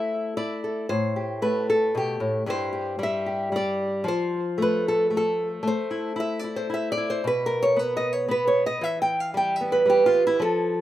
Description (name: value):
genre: folk, solo fingerstyle acoustic guitar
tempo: 114 BPM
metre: 3/4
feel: straight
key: unclear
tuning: A4 = 441 Hz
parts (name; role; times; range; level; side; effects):
- nylon-string guitar; solo; 0.0-10.8 s; G2 to G5; -22 LUFS; equal; slapback echo
room: little or no reverb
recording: recorded outdoors, with no room sound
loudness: -22 LUFS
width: side -13 dB against mid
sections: 0.0-10.8 A section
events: none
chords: 0.0 Am; 0.9 Am9; 2.5 C/G; 4.1 F; 5.6 Am; 7.2 N.C.; 8.8 Em